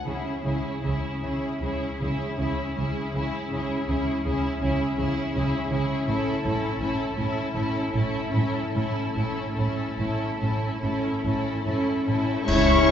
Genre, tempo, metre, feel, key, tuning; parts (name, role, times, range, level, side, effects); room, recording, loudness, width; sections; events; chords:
cinematic, emotional film score for orchestra; 71-83 BPM; 4/4; rubato; C# minor; A4 = 437 Hz
warm studio violin section; melody; 0.0-12.9 s; G#4 to C#6; -33 LUFS; left 2 dB
rich studio violin section; second line; 0.1-12.9 s; E4 to C#5; -32 LUFS; left 3 dB
warm studio viola section; accompaniment; 0.1-12.9 s; G#3 to E4; -29 LUFS; equal
dark studio cello section; bass; 0.1-12.9 s; A2 to G#4; -30 LUFS; right 1 dB
warm studio double bass section; bass; 0.1-12.9 s; A1 to C#2; -30 LUFS; right 1 dB
cymbal swell, clash cymbals and concert bass drum; percussion; 9.2-12.9 s; -29 LUFS; equal
flute section; second line; 12.5-12.9 s; C#5; -24 LUFS; left 9 dB
warm clarinet; second line; 12.5-12.9 s; C#4; -27 LUFS; right 3 dB
warm oboe; second line; 12.5-12.9 s; C#5; -28 LUFS; equal
dark French horn section; sustained chords; 12.5-12.9 s; C#4; -29 LUFS; left 4 dB
wet scoring stage reverb, RT60 2.0 s; heard from further back in the room, nothing above 7.6 kHz; -24 LUFS; side -9 dB against mid
0.1-12.5 A section
band accent 12.5-12.9
0.1 C#m; 6.1 A